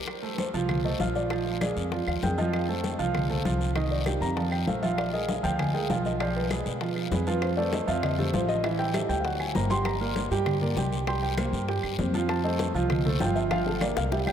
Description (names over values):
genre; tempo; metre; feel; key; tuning
Afro-Cuban jazz; 197 BPM; 4/4; straight; F mixolydian; A4 = 440 Hz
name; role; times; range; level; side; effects
bongos; percussion; 0.1-14.3 s; none; -39 LUFS; left 7 dB; none
claves; percussion; 0.1-14.3 s; none; -44 LUFS; right 4 dB; none
congas; percussion; 0.1-14.3 s; none; -33 LUFS; left 2 dB; none
guiro; percussion; 0.1-14.3 s; none; -41 LUFS; left 8 dB; none
warm grand piano; accompaniment; 0.2-14.3 s; Eb3 to G5; -29 LUFS; right 4 dB; none
felt-muted upright piano; melody; 0.3-14.3 s; G4 to C6; -32 LUFS; left 2 dB; none
upright bass; bass; 0.5-14.3 s; G1 to Cb3; -30 LUFS; left 1 dB; none
room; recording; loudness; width
wet cathedral reverb, RT60 6.8 s; in a vast, echoing space; -25 LUFS; side -9 dB against mid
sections
0.1-14.3 A section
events
felt piano solo 0.1-14.3; drum fill 13.8-14.3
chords
0.1 F; 1.3 Bb7; 2.5 F; 3.8 Cm7; 4.4 F; 5.0 Bb7; 6.2 Fdim; 7.4 F; 8.6 A5; 9.2 Daug7; 9.9 Gm; 11.1 C5; 12.3 F7; 13.5 Gm7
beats
| 0.08 0.39 0.69 1.00 | 1.31 1.61 1.92 2.23 | 2.53 2.84 3.15 3.45 | 3.76 4.06 4.37 4.67 | 4.98 5.29 5.59 5.89 | 6.20 6.50 6.81 7.11 | 7.42 7.72 8.03 8.33 | 8.64 8.94 9.25 9.55 | 9.86 10.16 10.46 10.77 | 11.07 11.38 11.68 11.99 | 12.29 12.60 12.90 13.20 | 13.51 13.81 14.12